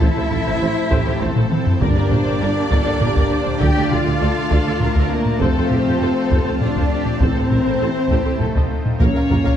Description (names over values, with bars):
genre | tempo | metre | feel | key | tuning
cinematic, epic orchestral film score | 100 BPM | 3/4 | straight | G dorian | A4 = 440 Hz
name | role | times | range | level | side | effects
rich symphonic violin section | melody | 0.0-9.6 s | F4 to D5 | -30 LUFS | left 4 dB | none
warm symphonic violin section | second line | 0.0-9.5 s | A4 to G5 | -27 LUFS | left 2 dB | none
warm symphonic viola section | accompaniment | 0.0-9.5 s | E4 to Eb5 | -29 LUFS | equal | none
bright trombone section | sustained chords | 0.0-9.6 s | A2 to Db4 | -29 LUFS | left 1 dB | none
dark French horn section | sustained chords | 0.0-9.6 s | C4 to C5 | -26 LUFS | left 3 dB | none
pipe organ, strings celeste | sustained chords | 0.0-9.6 s | F3 to A5 | -29 LUFS | right 1 dB | none
clear symphonic double bass section | bass | 0.0-9.4 s | F1 to F2 | -25 LUFS | right 3 dB | none
mellow tuba | bass | 0.0-9.4 s | F1 to D2 | -27 LUFS | right 2 dB | none
warm symphonic cello section | bass | 0.0-9.5 s | Bb2 to G4 | -24 LUFS | right 1 dB | none
taiko ensemble | drums | 0.0-9.6 s | none | -20 LUFS | equal | none
timpani | percussion | 1.8-4.5 s | G2 to D3 | -25 LUFS | equal | none
room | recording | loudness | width
moderate scoring stage reverb, RT60 2.0 s | dark, warm production | -15 LUFS | side -9 dB against mid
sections
0.0-9.0 A section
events
drum fill 1.4-1.8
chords
0.0 Am; 1.8 Gm; 3.6 Dm; 5.4 F; 7.2 Am; 8.4 F7; 9.0 Bbm